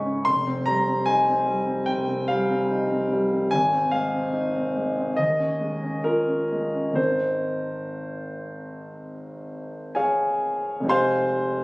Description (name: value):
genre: classical, impressionist solo piano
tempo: 55-77 BPM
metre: 4/4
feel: rubato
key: Ab major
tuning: A4 = 440 Hz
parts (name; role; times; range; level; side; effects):
- clear concert grand piano; solo; 0.0-11.6 s; F1 to Db6; -22 LUFS; equal; none
room: moderate concert hall reverb, RT60 1.9 s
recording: recorded on a phone in the room, studio reverb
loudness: -21 LUFS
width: side -23 dB against mid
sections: 0.0-10.9 A section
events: none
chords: 0.3 Fm9; 3.5 Ab6; 5.2 Eb9sus4; 7.0 Abadd9; 10.9 Fm9